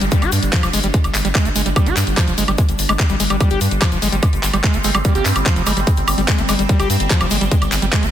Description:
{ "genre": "psychedelic trance", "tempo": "146 BPM", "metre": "4/4", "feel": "straight", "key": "unclear", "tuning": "A4 = 440 Hz", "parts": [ { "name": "evolving wavetable pad", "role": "sustained chords", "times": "0.0-8.1 s", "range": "G3 to D4", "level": "-25 LUFS", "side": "right 1 dB", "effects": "phaser, built-in reverb, sidechain pumping" }, { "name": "screaming distorted acid line", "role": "riff", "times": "0.0-8.1 s", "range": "F3 to G4", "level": "-22 LUFS", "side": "moving between left 6 dB and right 8 dB", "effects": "distortion, chorus, auto-pan, sidechain pumping, ping-pong delay" }, { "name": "round analog bass", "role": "bass", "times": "0.0-8.1 s", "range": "F1 to G2", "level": "-20 LUFS", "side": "equal", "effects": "none" }, { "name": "garage drum kit", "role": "drums", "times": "0.0-8.1 s", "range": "handclaps, hi-hat, woodblock", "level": "-21 LUFS", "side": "equal", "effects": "small room ambience, soft clipping on snare" }, { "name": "egg shaker", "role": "percussion", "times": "0.0-8.1 s", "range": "none", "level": "-31 LUFS", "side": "left 5 dB", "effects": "none" }, { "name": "electronic kick drum", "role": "drums", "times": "0.1-8.0 s", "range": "none", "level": "-16 LUFS", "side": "equal", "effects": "small room ambience" }, { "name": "metallic wobble bass", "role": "second line", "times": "4.8-5.8 s", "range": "G3 to C4", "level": "-32 LUFS", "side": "right 3 dB", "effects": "none" } ], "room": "light reverb, digital ambience", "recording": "dense, heavily limited modern master", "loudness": "-14 LUFS", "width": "side -11 dB against mid", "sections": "0.0-8.1 A section", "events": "none", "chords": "0.0 G5", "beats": "| 0.12 0.53 0.94 1.35 | 1.76 2.17 2.58 2.99 | 3.40 3.82 4.23 4.64 | 5.05 5.46 5.87 6.28 | 6.69 7.10 7.51 7.93" }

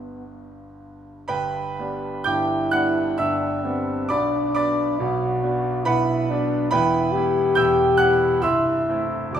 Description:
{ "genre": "classical, romantic duo for French horn and grand piano", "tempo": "58-72 BPM", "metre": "3/4", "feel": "rubato", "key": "G major", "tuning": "A4 = 440 Hz", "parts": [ { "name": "mellow French horn", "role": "melody", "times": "0.0-9.4 s", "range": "B3 to G4", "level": "-22 LUFS", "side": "left 2 dB", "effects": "none" }, { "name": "bright concert grand piano", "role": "accompaniment", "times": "0.0-9.4 s", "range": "C1 to G6", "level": "-22 LUFS", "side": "right 2 dB", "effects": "none" } ], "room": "moderate recital hall reverb, RT60 1.6 s", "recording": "minimal, uncompressed stereo recording", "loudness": "-19 LUFS", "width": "side -9 dB against mid", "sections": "0.0-1.3 A section; 1.3-9.4 B section", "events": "none", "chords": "0.0 G; 4.1 Bm; 6.7 Em; 8.4 Am/C", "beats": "0.28 | 1.29 2.25 3.18 | 4.08 4.97 5.84 | 6.70 7.54 8.41 | 9.34" }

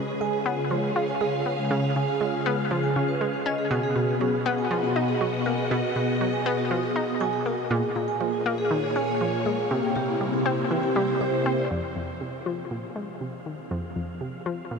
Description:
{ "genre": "ambient, sequencer-driven space music", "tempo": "120 BPM", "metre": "4/4", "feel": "straight", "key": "F minor from 11.7 s", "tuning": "A4 = 440 Hz", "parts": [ { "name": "phased string machine", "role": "sustained chords", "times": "0.0-14.8 s", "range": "A#2 to E#5", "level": "-27 LUFS", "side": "left 1 dB", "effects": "ensemble chorus, phaser" }, { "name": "analog pluck", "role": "riff", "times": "0.0-14.8 s", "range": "F2 to E#4", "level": "-29 LUFS", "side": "left 1 dB", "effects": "chorus, vintage 12-bit sampler grit, tape echo" }, { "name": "vibraphone with soft mallets", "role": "arpeggios", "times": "0.1-11.6 s", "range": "G#3 to G#5", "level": "-29 LUFS", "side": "moving between left 2 dB and right 6 dB", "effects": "auto-pan, tape echo" }, { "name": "wind-like tuned noise texture", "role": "texture", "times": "12.7-14.8 s", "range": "F5", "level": "-50 LUFS", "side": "right 2 dB", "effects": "built-in reverb" } ], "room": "wet huge ambient reverb, RT60 7.6 s", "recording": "cassette tape", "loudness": "-23 LUFS", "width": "side -5 dB against mid", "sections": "0.0-11.7 A section; 11.7-14.8 B section", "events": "none", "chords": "0.0 C#; 3.7 B; 7.7 A#m7; 9.7 C7; 11.7 Fm", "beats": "0.21 0.71 1.21 | 1.71 2.21 2.71 3.21 | 3.71 4.21 4.71 5.21 | 5.71 6.21 6.71 7.21 | 7.71 8.21 8.71 9.21 | 9.71 10.21 10.71 11.21 | 11.71 12.21 12.71 13.21 | 13.71 14.21 14.71" }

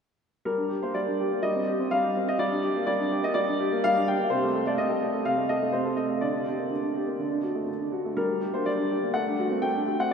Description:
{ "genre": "classical-period piano sonatina", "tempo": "124 BPM", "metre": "4/4", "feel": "rubato", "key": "G minor", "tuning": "A4 = 439 Hz", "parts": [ { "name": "clear baby grand piano", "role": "solo", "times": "0.5-10.1 s", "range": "C3 to G5", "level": "-24 LUFS", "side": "equal", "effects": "none" } ], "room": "wet cathedral reverb, RT60 6.0 s", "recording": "recorded in a church or concert hall", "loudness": "-24 LUFS", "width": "side -6 dB against mid", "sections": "0.5-10.1 A section", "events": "none", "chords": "0.5 Gm; 1.4 Cm/G; 2.4 Gm; 4.3 Adim/C; 6.2 Gm/D; 7.2 D; 8.2 Gm; 9.2 D7/A", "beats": "| 0.46 0.95 1.43 1.92 | 2.40 2.88 3.35 3.83 | 4.30 4.77 5.25 5.72 | 6.21 6.71 7.20 7.69 | 8.18 8.66 9.15 9.63 | 10.12" }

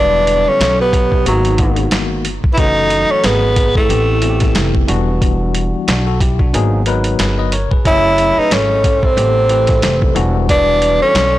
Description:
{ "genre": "hip hop, jazz-hop", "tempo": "91 BPM", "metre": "4/4", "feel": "swing 58% on 16ths", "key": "unclear", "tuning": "A4 = 439 Hz", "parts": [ { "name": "breathy tenor saxophone", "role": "melody", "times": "0.0-11.4 s", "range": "F#3 to E4", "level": "-14 LUFS", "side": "equal", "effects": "analog delay" }, { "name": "vibraphone with medium mallets", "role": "second line", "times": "0.0-11.4 s", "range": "D#4 to C#5", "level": "-22 LUFS", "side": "right 5 dB", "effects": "none" }, { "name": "bell-like tine electric piano", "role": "accompaniment", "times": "0.0-11.2 s", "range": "D3 to D#5", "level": "-20 LUFS", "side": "left 4 dB", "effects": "medium stereo tremolo" }, { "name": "upright bass", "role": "bass", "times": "0.0-11.4 s", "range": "E1 to B1", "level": "-18 LUFS", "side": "equal", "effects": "transformer saturation" }, { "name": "boom bap sampler-style drum kit", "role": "drums", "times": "0.3-11.3 s", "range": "hi-hat, kick drum, snare drum", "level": "-16 LUFS", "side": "equal", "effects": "vintage 12-bit sampler grit" } ], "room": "light reverb, small room ambience", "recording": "blown-out, overdriven recording, overdrive", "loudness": "-11 LUFS", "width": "side -15 dB against mid", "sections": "0.0-11.4 A section", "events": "none", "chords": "0.0 Em9; 1.3 G#m9; 2.6 F#m9; 3.9 Am9; 4.9 Em9; 6.5 G#m9; 7.9 F#m9; 9.2 Am9; 10.2 Em9", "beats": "0.60 1.26 1.92 | 2.58 3.24 3.90 4.56 | 5.22 5.88 6.54 7.20 | 7.85 8.51 9.17 9.83 | 10.49 11.15" }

